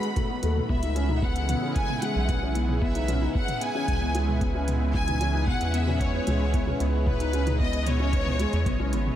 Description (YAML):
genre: piano and strings electronica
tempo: 113 BPM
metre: 4/4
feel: straight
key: C# minor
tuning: A4 = 441 Hz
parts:
  - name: rich studio violin section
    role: melody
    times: 0.0-8.9 s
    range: B4 to B5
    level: -31 LUFS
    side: left 1 dB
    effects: analog delay
  - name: lush unison pad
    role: sustained chords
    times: 0.0-9.2 s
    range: C#3 to F#4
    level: -32 LUFS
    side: equal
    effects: chorus, phaser, sidechain pumping
  - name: felt-muted upright piano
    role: riff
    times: 0.0-9.1 s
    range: G#3 to D#4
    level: -31 LUFS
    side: left 2 dB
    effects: wide subtle chorus, analog delay
  - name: organic electronic drum kit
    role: drums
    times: 0.0-9.2 s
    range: hi-hat, toms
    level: -36 LUFS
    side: right 1 dB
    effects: studio reverb
  - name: electronic kick drum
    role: drums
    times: 0.2-8.8 s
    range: none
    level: -28 LUFS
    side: equal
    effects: studio reverb
  - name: round analog bass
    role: bass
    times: 0.4-9.1 s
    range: G#1 to E2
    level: -26 LUFS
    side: equal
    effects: tube saturation, sidechain pumping
room: moderate huge ambient reverb, RT60 9.4 s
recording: dreamy mix soaked in reverb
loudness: -23 LUFS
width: side -11 dB against mid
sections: 0.0-9.2 A section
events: none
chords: 0.0 B7; 0.7 C#m7